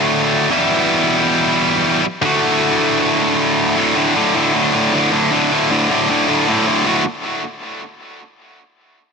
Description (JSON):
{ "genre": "punk", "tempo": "156 BPM", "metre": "4/4", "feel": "straight", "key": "D major", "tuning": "A4 = 440 Hz", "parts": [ { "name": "tight distorted guitar", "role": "solo", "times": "0.0-7.0 s", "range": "D2 to F#4", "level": "-14 LUFS", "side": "equal", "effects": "distortion, digital delay" } ], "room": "light reverb", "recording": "dense, heavily limited modern master", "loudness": "-13 LUFS", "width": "side -5 dB against mid", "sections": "0.0-3.8 A section; 3.8-6.9 B section; 6.9-8.4 C section", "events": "none", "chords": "0.5 Em; 2.2 D; 3.8 D5; 6.9 D", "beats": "0.31 | 0.69 1.07 1.46 1.84 | 2.23 2.61 3.00 3.38 | 3.77 4.15 4.54 4.92 | 5.31 5.70 6.08 6.47 | 6.86" }